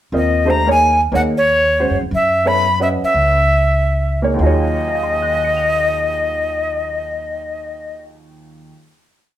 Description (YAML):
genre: modal jazz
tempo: 127-181 BPM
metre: 3/4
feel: swing 64% on 8ths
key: Eb dorian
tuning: A4 = 439 Hz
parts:
  - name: clear upright piano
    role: accompaniment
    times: 0.1-9.0 s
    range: Eb2 to F7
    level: -20 LUFS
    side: right 2 dB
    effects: none
  - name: upright bass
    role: bass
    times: 0.1-8.7 s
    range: Db2 to Gb2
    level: -20 LUFS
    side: equal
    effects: none
  - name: breathy bright jazz flute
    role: melody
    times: 0.2-8.0 s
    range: Db5 to Cb6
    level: -16 LUFS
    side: equal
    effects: none
room: wet club reverb, RT60 0.7 s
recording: heard from further back in the room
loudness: -14 LUFS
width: side -12 dB against mid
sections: 0.1-4.4 A section; 4.4-7.2 final chord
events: slowing down 2.1-4.4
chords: 0.1 Ebm11; 2.1 Gb7sus4; 4.4 Ebm11